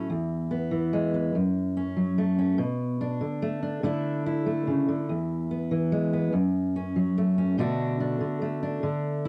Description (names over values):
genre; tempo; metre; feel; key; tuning
folk; 144 BPM; 3/4; straight; E mixolydian; A4 = 440 Hz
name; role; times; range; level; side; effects
fingerpicked steel-string acoustic guitar; solo; 0.0-9.3 s; E2 to F#4; -27 LUFS; equal; cassette tape
room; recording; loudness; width
little or no reverb; home recording on cassette; -27 LUFS; mono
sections
0.1-9.3 A section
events
none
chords
0.1 E; 1.3 F#m; 2.6 Bm7; 3.8 Dsus2; 5.1 E; 6.3 F#m; 7.6 Bm7